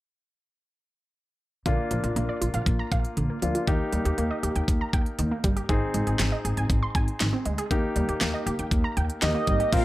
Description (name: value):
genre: synth-pop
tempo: 119 BPM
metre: 4/4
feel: straight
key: unclear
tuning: A4 = 438 Hz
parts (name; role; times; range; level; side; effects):
- warm concert grand piano; accompaniment; 1.7-9.8 s; Bb3 to Bb4; -31 LUFS; left 2 dB; none
- wide unison pluck; arpeggios; 1.7-9.7 s; D3 to C6; -32 LUFS; right 2 dB; slapback echo
- upright bass; bass; 1.7-9.8 s; G1 to Eb2; -28 LUFS; equal; none
- pop drum kit; drums; 1.7-9.8 s; crash cymbal, hi-hat, kick drum, snare drum; -26 LUFS; equal; none
- fat analog lead; melody; 9.2-9.8 s; Eb5 to F5; -25 LUFS; right 3 dB; chorus, phaser, slapback echo
- phased analog pad; sustained chords; 9.7-9.8 s; Bb3 to F4; -27 LUFS; left 4 dB; phaser, chorus
room: light reverb, digital ambience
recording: none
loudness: -23 LUFS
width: side -16 dB against mid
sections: 1.7-9.7 A section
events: none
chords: 1.7 Bb; 3.7 Eb; 5.7 Ab; 7.7 Eb